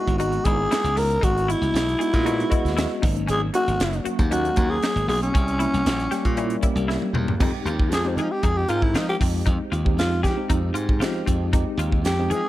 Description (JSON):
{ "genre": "electric jazz fusion", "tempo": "116 BPM", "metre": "4/4", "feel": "straight", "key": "C# dorian, F minor from 7.4 s", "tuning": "A4 = 438 Hz", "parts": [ { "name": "growling alto saxophone", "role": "melody", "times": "0.0-12.5 s", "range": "C4 to A#4", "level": "-24 LUFS", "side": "equal", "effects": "none" }, { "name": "tine electric piano", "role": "accompaniment", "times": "0.0-12.5 s", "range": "F#3 to D#5", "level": "-28 LUFS", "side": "equal", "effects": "overdrive, medium stereo tremolo, phaser" }, { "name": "clean electric guitar", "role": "stabs", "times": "0.0-12.5 s", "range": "B3 to G#4", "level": "-34 LUFS", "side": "left 3 dB", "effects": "ensemble chorus" }, { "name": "glassy slap bass", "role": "bass", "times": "0.1-12.4 s", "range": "F#1 to F3", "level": "-25 LUFS", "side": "equal", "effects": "none" }, { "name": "crisp fusion drum kit", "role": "drums", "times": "0.1-12.4 s", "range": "crash cymbal, hi-hat, kick drum, snare drum, toms", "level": "-24 LUFS", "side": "equal", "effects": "none" } ], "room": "studio ambience", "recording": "none", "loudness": "-20 LUFS", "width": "side -15 dB against mid", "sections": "0.0-7.4 A section; 7.4-12.5 B section", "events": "drum fill 6.9-7.4; alto saxophone solo 7.4-12.5", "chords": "0.0 C#m7; 3.0 G#7sus4; 5.3 C7b9; 7.4 Fm9", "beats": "0.19 0.71 | 1.22 1.74 2.25 2.77 | 3.28 3.79 4.31 4.83 | 5.34 5.86 6.37 6.88 | 7.40 7.92 8.43 8.95 | 9.46 9.98 10.50 11.01 | 11.53 12.04" }